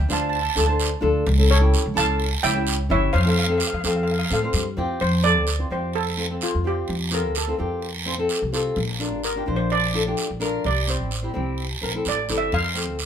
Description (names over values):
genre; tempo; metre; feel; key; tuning
calypso; 128 BPM; 4/4; straight; F major; A4 = 439 Hz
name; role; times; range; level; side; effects
steel pan; melody; 0.0-13.1 s; F4 to A5; -25 LUFS; right 2 dB; none
upright bass; bass; 0.0-13.1 s; G1 to A2; -23 LUFS; equal; none
flamenco guitar; accompaniment; 0.1-13.0 s; C4 to C5; -26 LUFS; left 2 dB; none
guiro; percussion; 0.1-13.1 s; none; -29 LUFS; right 5 dB; none
room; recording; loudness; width
moderate studio reverb, RT60 0.5 s; minimal, uncompressed stereo recording; -20 LUFS; side -8 dB against mid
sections
0.0-5.0 A section; 5.0-13.1 B section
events
steel pan solo 5.0-13.1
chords
0.0 Dm7; 1.3 A7/C#; 3.1 Fadd9; 8.8 Bbadd9; 10.6 C; 12.5 F